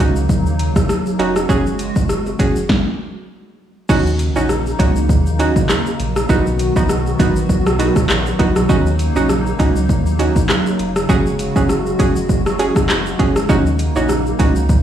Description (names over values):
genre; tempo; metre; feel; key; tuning
dancehall; 100 BPM; 4/4; swing 56% on 16ths; Eb minor; A4 = 440 Hz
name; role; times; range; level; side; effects
analog pluck; accompaniment; 0.0-14.6 s; B3 to Ab4; -20 LUFS; right 3 dB; chorus
hollow soft pad; sustained chords; 0.0-14.8 s; Db3 to Gb4; -22 LUFS; equal; ensemble chorus, sidechain pumping
saturated sub bass; bass; 0.0-14.8 s; F1 to Eb2; -20 LUFS; equal; none
deep house drum kit; drums; 0.0-14.8 s; crash cymbal, handclaps, hi-hat, kick drum, rim click, shaker, snare drum; -17 LUFS; equal; overdrive
tube shaker and timbales; percussion; 0.2-14.8 s; none; -36 LUFS; left 5 dB; none
room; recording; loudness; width
light reverb, digital ambience; played on a big sound system in a bare room, stone room reverb, studio reverb; -14 LUFS; side -10 dB against mid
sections
0.0-3.9 A section; 3.9-14.8 B section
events
stop 2.7-3.9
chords
0.0 Ebm7; 1.5 Gbsus2; 3.9 Ebm7; 6.3 B; 8.7 Ebm7; 11.1 Gbsus2; 13.5 Ebm7